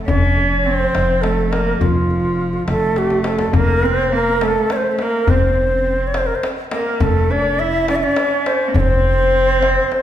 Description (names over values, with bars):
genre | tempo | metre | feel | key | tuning
Persian modal ensemble | 69 BPM (dotted quarters) | 6/8 | straight | F dastgah chahargah | A4 = 439 Hz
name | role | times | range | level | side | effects
dark double bass | drone | 0.0-3.6 s | F2 | -26 LUFS | right 1 dB | none
bright reedy ney | melody | 0.1-10.0 s | F4 to E5 | -18 LUFS | equal | none
rich cello | second line | 0.1-10.0 s | F3 to E4 | -22 LUFS | right 2 dB | none
upright bass | bass | 0.1-9.8 s | F1 | -21 LUFS | equal | none
tombak | percussion | 0.1-10.0 s | none | -22 LUFS | left 2 dB | none
room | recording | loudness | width
wet recital hall reverb, RT60 1.4 s | recorded in a church or concert hall | -14 LUFS | side -11 dB against mid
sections
0.0-3.5 A section; 3.5-10.0 B section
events
drum fill 3.0-3.5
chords
none